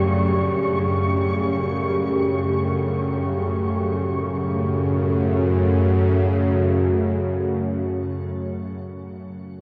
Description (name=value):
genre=dark ambient drone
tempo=free time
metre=none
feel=none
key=F# phrygian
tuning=A4 = 440 Hz
part: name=deep dark ambient pad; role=sustained chords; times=0.0-8.6 s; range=F#2 to D5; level=-26 LUFS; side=equal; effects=chorus, built-in reverb, shimmer reverb
part: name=bowed-like drone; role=drone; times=0.0-8.3 s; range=F#2 to C#3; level=-24 LUFS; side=equal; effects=built-in reverb
part: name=flickering grainy texture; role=texture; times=0.0-4.1 s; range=C#6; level=-34 LUFS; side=equal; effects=built-in reverb, shimmer reverb
room=wet cathedral reverb, RT60 7.2 s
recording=worn, warbling old tape, cassette tape, warbly pitch drift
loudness=-22 LUFS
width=mono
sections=0.0-4.1 A section; 4.1-8.0 B section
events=none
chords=0.0 Gsus2/F#; 4.1 F#m